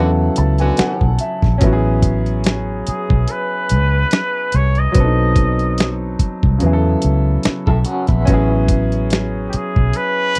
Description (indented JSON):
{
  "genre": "R&B, neo-soul",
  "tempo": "72 BPM",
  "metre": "4/4",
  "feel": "swing 54% on 16ths",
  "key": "A major",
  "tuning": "A4 = 440 Hz",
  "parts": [
    { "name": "clear concert grand piano", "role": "accompaniment", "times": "0.0-10.4 s", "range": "C#3 to A5", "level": "-22 LUFS", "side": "equal", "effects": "none" },
    { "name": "clear horn section", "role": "stabs", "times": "0.0-1.1 s", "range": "D3 to F#4", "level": "-24 LUFS", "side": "equal", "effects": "none" },
    { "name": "vintage muted fingered electric bass", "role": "bass", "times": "0.0-9.9 s", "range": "A1 to E2", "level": "-19 LUFS", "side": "equal", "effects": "none" },
    { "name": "dusty soul sampler-style drum kit", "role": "drums", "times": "0.4-10.4 s", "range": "hi-hat, kick drum, snare drum", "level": "-19 LUFS", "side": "equal", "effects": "none" },
    { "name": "trumpet with straight mute", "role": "melody", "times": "2.9-10.4 s", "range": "G4 to D#5", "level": "-22 LUFS", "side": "equal", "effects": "slapback echo" },
    { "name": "electric guitar through a small old amp", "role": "second line", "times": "7.7-8.5 s", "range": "B3 to A4", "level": "-25 LUFS", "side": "equal", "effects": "tremolo" }
  ],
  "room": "little or no reverb",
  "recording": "dry, close 1970s-style studio recording",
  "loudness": "-16 LUFS",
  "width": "mono",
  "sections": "0.0-10.4 A section",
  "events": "grand piano fill 0.0-1.6; band accent 0.0-1.6",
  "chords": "0.0 E9sus4; 1.6 Amaj9; 4.9 B7b9; 6.6 Esus24; 8.3 Amaj9"
}